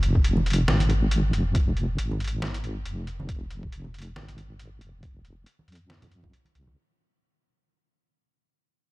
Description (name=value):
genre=deep dubstep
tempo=138 BPM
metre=4/4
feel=swing 57% on 16ths, half-time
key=F minor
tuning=A4 = 440 Hz
part: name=deep soft wobble bass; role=bass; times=0.0-6.8 s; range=F1 to F2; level=-26 LUFS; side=equal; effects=chorus
part: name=trip hop sampler-style drum kit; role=drums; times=0.0-6.7 s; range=hi-hat, snare drum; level=-31 LUFS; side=equal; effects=overdrive, studio reverb
part: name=electronic kick drum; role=drums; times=0.2-6.3 s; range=none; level=-25 LUFS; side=equal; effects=overdrive, studio reverb
part: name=congas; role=percussion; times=0.4-6.7 s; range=none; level=-34 LUFS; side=right 1 dB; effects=none
room=digital ambience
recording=dark, warm production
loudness=-23 LUFS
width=side -21 dB against mid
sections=0.0-6.8 A section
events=fade-out 0.0-6.8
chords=none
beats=0.25 0.68 1.12 | 1.55 1.99 2.42 2.85 | 3.29 3.72 4.16 4.59 | 5.03 5.46 5.90 6.33